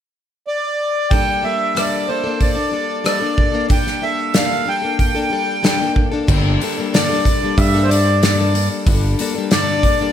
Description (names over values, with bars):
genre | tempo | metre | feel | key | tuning
folk rock and heartland rock | 93 BPM | 4/4 | straight | G dorian | A4 = 442 Hz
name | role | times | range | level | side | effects
accordion | melody | 0.5-10.1 s | C5 to G5 | -20 LUFS | equal | slapback echo
picked plugged-in steel-string acoustic guitar | accompaniment | 1.1-10.1 s | G2 to A4 | -21 LUFS | left 4 dB | none
natural country drum kit | drums | 1.1-10.0 s | crash cymbal, hi-hat, kick drum, rim click, snare drum | -18 LUFS | equal | none
picked electric bass | bass | 6.3-9.1 s | G1 to G2 | -16 LUFS | equal | none
room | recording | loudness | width
moderate lush hall reverb, RT60 2.1 s | big arena sound | -15 LUFS | side -10 dB against mid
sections
0.0-1.1 A section; 1.1-6.3 B section; 6.3-10.1 C section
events
none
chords
0.0 N.C.; 1.1 Gmadd9